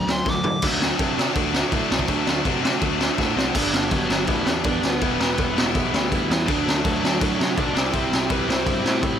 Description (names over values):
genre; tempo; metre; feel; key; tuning
punk rock; 164 BPM; 4/4; straight; G major from 3.6 s; A4 = 439 Hz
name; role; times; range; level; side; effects
dark smooth lead guitar; melody; 0.0-0.6, 3.4-9.0 s; E3 to D6; -27 LUFS; equal; overdrive
crunchy overdriven guitar; riff; 0.0-9.2 s; G2 to F#4; -26 LUFS; left 13 dB; none
raw garage guitar; riff; 0.0-9.2 s; G2 to E4; -27 LUFS; right 16 dB; overdrive
fuzz picked electric bass; bass; 0.0-9.2 s; E1 to C3; -29 LUFS; equal; overdrive
raw garage drum kit; drums; 0.1-9.1 s; crash cymbal, kick drum, snare drum, toms; -23 LUFS; equal; none
room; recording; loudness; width
little or no reverb; none; -19 LUFS; side -9 dB against mid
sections
0.6-3.6 A section; 3.6-9.2 B section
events
drum fill 0.3-0.6, 3.2-3.6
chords
0.0 D; 3.6 G; 5.0 Em; 6.5 D; 7.8 C